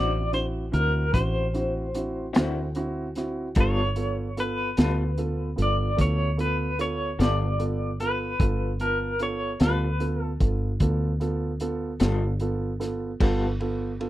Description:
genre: slow blues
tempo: 50 BPM (dotted quarters)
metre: 12/8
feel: straight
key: G mixolydian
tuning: A4 = 444 Hz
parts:
  - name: electric guitar through a small old amp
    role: melody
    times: 0.0-10.5 s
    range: Bb4 to D5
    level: -29 LUFS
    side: left 1 dB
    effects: tremolo
  - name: dark concert grand piano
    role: accompaniment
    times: 0.0-14.1 s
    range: B3 to A5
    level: -31 LUFS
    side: right 2 dB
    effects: none
  - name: electric guitar through a small old amp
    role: accompaniment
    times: 0.0-13.5 s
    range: D3 to A4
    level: -30 LUFS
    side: left 4 dB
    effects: tremolo
  - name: fingered electric bass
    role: bass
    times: 0.0-14.1 s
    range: G1 to D2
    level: -27 LUFS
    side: equal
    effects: none
  - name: crunchy breakbeat drum kit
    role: drums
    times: 0.3-14.1 s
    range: crash cymbal, hi-hat, kick drum, ride cymbal, snare drum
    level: -24 LUFS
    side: equal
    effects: none
room: small room ambience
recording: dry, close 1970s-style studio recording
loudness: -23 LUFS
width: side -15 dB against mid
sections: 0.0-13.2 A section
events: none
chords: 0.0 D9; 3.6 G9

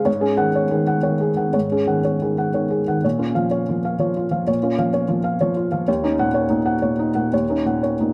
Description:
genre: neoclassical minimalist piano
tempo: 114-131 BPM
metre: 3/4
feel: rubato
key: Bb minor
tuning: A4 = 442 Hz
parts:
  - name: felt-muted upright piano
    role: solo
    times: 0.0-8.1 s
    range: Eb2 to Gb5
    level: -20 LUFS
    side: equal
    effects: none
room: moderate spring reverb, RT60 1.8 s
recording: none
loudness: -20 LUFS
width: mono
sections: 0.0-8.1 A section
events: none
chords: 0.1 Ab7sus4; 3.0 Bbm; 5.9 Ebm7

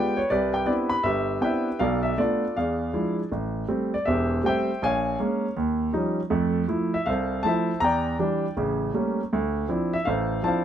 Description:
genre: solo jazz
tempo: 160 BPM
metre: 4/4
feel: swing 65% on 8ths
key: C major, A minor from 3.3 s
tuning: A4 = 440 Hz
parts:
  - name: warm concert grand piano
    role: solo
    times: 0.0-10.6 s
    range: E1 to B5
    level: -23 LUFS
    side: equal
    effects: none
room: light reverb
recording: none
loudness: -23 LUFS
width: side -9 dB against mid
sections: 0.0-3.3 A section; 3.3-10.6 B section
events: none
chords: 0.3 Cmaj9; 1.8 Bm7b5; 2.5 E7b9; 3.3 Am7; 4.8 Bbm7; 5.6 D#9; 6.3 Fmaj7; 7.8 Em7b5; 8.6 A7b9; 9.3 Dm9

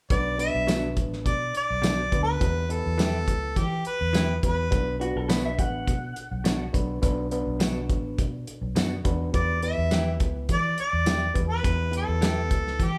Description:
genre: straight-eighth soul blues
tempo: 104 BPM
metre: 4/4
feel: straight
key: B minor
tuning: A4 = 440 Hz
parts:
  - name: mellow harmonica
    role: melody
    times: 0.1-5.0, 9.3-13.0 s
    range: G4 to E5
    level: -30 LUFS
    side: equal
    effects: none
  - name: overdriven reed electric piano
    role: accompaniment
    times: 0.1-12.9 s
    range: B3 to B4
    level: -36 LUFS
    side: equal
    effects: spring reverb
  - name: vintage muted fingered electric bass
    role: bass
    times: 0.1-13.0 s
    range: A1 to E3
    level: -32 LUFS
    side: equal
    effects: none
  - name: cloth-damped thuddy drum kit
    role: drums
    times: 0.1-12.9 s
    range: hi-hat, kick drum, snare drum, tambourine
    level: -28 LUFS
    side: equal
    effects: none
  - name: direct-recorded clean electric guitar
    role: stabs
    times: 0.7-12.4 s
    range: B2 to G4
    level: -36 LUFS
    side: equal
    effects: spring reverb
  - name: electric guitar through a small old amp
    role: second line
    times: 5.0-6.7 s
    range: F#4 to F#5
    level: -35 LUFS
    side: equal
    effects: none
room: moderate large studio reverb, RT60 0.9 s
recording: band playing live in one room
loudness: -26 LUFS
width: mono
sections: 0.1-13.0 A section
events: none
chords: 0.1 Bm; 2.4 Em; 4.7 Bm; 9.3 Em

